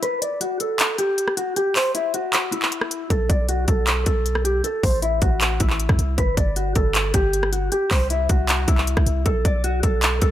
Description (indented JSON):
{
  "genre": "hip hop, trap",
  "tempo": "156 BPM",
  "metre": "4/4",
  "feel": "half-time",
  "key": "B phrygian",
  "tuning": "A4 = 440 Hz",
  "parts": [
    { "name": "mellow electric guitar", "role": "melody", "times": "0.0-10.3 s", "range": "E4 to D5", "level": "-23 LUFS", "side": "left 1 dB", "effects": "low-pass filter, tape echo" },
    { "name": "trap drum kit", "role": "drums", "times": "0.0-10.3 s", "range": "handclaps, hi-hat, kick drum, rim click", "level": "-21 LUFS", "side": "equal", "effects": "none" },
    { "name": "long sustained 808-style bass", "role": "bass", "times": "3.1-10.3 s", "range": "G1 to E2", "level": "-23 LUFS", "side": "equal", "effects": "none" }
  ],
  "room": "digital ambience",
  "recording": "none",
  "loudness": "-18 LUFS",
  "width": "side -12 dB against mid",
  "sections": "0.0-10.3 A section",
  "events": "break 0.0-3.1",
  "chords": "0.0 N.C.; 3.1 B7(no3); 4.6 A5; 6.2 Gmaj7sus2; 7.7 C; 9.3 B7(no3)",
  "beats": "| 0.03 0.41 0.80 1.18 | 1.56 1.95 2.33 2.72 | 3.10 3.49 3.87 4.26 | 4.64 5.03 5.41 5.79 | 6.18 6.56 6.95 7.33 | 7.72 8.10 8.49 8.87 | 9.26 9.64 10.03"
}